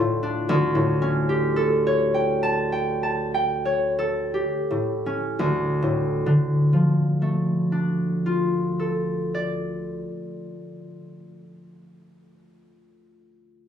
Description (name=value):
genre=classical, solo harp piece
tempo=41-58 BPM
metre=4/4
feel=rubato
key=D minor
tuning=A4 = 440 Hz
part: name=concert harp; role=solo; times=0.0-12.3 s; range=D2 to A5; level=-21 LUFS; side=equal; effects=none
room=light reverb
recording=recorded on a phone in the room, club reverb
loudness=-21 LUFS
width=side -9 dB against mid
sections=0.0-5.4 A section; 5.4-10.8 B section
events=slowing down 0.0-5.4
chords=0.5 A7/D; 5.4 Dm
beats=| 0.50 1.57 2.72 3.99 | 5.40 6.75 8.13 9.48